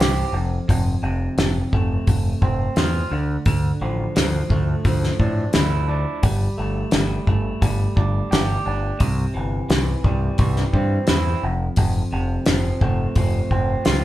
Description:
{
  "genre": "quiet-loud alternative rock",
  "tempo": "86 BPM",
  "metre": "4/4",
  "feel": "straight",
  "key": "unclear",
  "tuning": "A4 = 440 Hz",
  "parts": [
    { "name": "electric guitar through a small old amp", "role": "arpeggios", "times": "0.0-14.0 s", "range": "F2 to G4", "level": "-26 LUFS", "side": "right 2 dB", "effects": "none" },
    { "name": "growling picked electric bass", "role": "bass", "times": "0.0-14.0 s", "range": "F1 to A2", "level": "-23 LUFS", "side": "equal", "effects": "overdrive" },
    { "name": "loose indie drum kit", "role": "drums", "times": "0.0-14.0 s", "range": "hi-hat, kick drum, snare drum", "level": "-20 LUFS", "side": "equal", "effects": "none" }
  ],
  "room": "light reverb",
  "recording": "band playing live in one room",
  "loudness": "-18 LUFS",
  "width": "side -14 dB against mid",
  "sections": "0.0-14.0 A section",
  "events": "none",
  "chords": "0.3 F; 3.1 Dmadd9; 6.2 Gsus2; 9.0 C; 11.4 F"
}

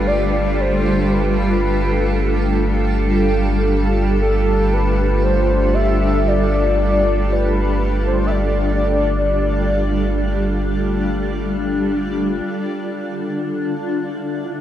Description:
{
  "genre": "ambient",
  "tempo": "free time",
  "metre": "none",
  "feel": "none",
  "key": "unclear",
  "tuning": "A4 = 440 Hz",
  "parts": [
    { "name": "warm velvety synth lead", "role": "melody", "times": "0.0-11.4 s", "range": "A4 to E5", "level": "-22 LUFS", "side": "left 1 dB", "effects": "chorus, analog delay" },
    { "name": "granular cloud pad", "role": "sustained chords", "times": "0.0-14.6 s", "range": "D3 to C5", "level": "-20 LUFS", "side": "equal", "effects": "built-in reverb, wide subtle chorus" },
    { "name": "warm sub bass", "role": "bass", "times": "0.0-12.4 s", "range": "G1", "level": "-20 LUFS", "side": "equal", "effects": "none" },
    { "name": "bowed-like drone", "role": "drone", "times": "0.0-14.6 s", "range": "D3 to A3", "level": "-27 LUFS", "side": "left 3 dB", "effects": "built-in reverb" }
  ],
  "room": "moderate plate reverb, RT60 2.2 s",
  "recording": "dreamy mix soaked in reverb",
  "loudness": "-16 LUFS",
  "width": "side -11 dB against mid",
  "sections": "0.0-12.5 A section; 12.5-14.6 B section",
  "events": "none",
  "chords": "0.0 G9; 12.5 Dm"
}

